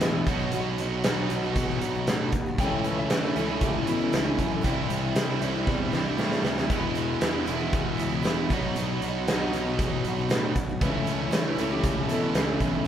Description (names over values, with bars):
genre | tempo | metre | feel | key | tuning
classic rock | 117 BPM | 4/4 | straight | unclear | A4 = 441 Hz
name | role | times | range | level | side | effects
picked steel-string acoustic guitar | accompaniment | 0.0-12.9 s | E2 to G#4 | -34 LUFS | right 1 dB | none
distorted electric guitar | riff | 0.0-12.9 s | E2 to G#4 | -30 LUFS | right 6 dB | overdrive
overdriven semi-hollow guitar | riff | 0.0-12.9 s | E2 to F#4 | -31 LUFS | left 5 dB | none
fuzz picked electric bass | bass | 0.0-12.8 s | E1 to C#3 | -32 LUFS | equal | overdrive
big rock drum kit | drums | 0.0-12.7 s | hi-hat, kick drum, snare drum | -28 LUFS | equal | none
electric slide guitar | second line | 2.6-4.4, 10.8-12.6 s | E4 to G5 | -34 LUFS | left 2 dB | none
room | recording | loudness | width
moderate stone room reverb, RT60 1.2 s | band playing live in one room | -24 LUFS | side -9 dB against mid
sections
0.0-12.9 A section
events
drum fill 5.7-6.7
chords
0.3 B; 2.6 A/C#; 4.6 C; 6.7 E; 8.5 B; 10.8 A/C#